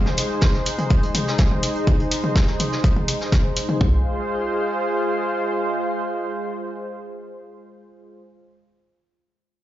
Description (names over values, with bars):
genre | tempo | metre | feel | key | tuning
melodic techno | 124 BPM | 4/4 | straight | F minor | A4 = 438 Hz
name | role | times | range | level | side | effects
lush unison pad | sustained chords | 0.0-8.2 s | Ab3 to C5 | -24 LUFS | equal | chorus, sidechain pumping
punchy analog drum machine | drums | 0.1-3.8 s | hi-hat, toms | -25 LUFS | left 1 dB | none
vintage brush drum kit | drums | 0.1-3.7 s | hi-hat, shaker, snare drum | -31 LUFS | equal | high-pass filter on hats, high-pass filter on snare, high-pass filter on perc, high-pass filter on room
house drum kit | drums | 0.4-3.9 s | kick drum, toms | -18 LUFS | equal | none
room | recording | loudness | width
light reverb, small room ambience | played on a big sound system in a bare room, large studio reverb, nothing above 7.5 kHz | -19 LUFS | side -13 dB against mid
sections
0.0-3.8 A section; 3.8-7.7 B section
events
none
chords
0.0 Ab; 3.8 Fm